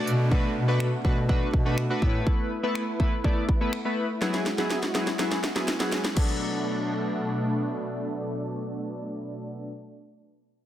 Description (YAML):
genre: dance-pop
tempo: 123 BPM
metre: 4/4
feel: straight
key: B dorian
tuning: A4 = 440 Hz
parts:
  - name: chorused retro synth keys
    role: accompaniment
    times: 0.0-9.7 s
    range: F#3 to D5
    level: -29 LUFS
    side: left 1 dB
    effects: sidechain pumping, low-pass filter
  - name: filtered supersaw swell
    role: sustained chords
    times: 0.0-9.7 s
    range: B2 to B4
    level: -32 LUFS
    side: equal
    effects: sidechain pumping, low-pass filter
  - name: downlifter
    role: sound effects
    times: 0.0-2.3 s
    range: none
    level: -42 LUFS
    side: right 2 dB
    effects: none
  - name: breathy bass clarinet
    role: bass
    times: 0.1-2.2 s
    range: A2 to B2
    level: -26 LUFS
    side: equal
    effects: sidechain pumping
  - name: house drum kit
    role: drums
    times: 0.1-6.3 s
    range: crash cymbal, finger snaps, hi-hat, kick drum, snare drum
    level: -27 LUFS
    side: equal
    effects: soft clipping on snare
room: light reverb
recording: dense, heavily limited modern master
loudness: -24 LUFS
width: side -12 dB against mid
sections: 0.0-6.2 A section; 6.2-10.1 B section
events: drum fill 4.2-6.2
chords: 0.0 Bm7; 2.0 Asus2; 4.2 Eadd9; 6.2 Bm7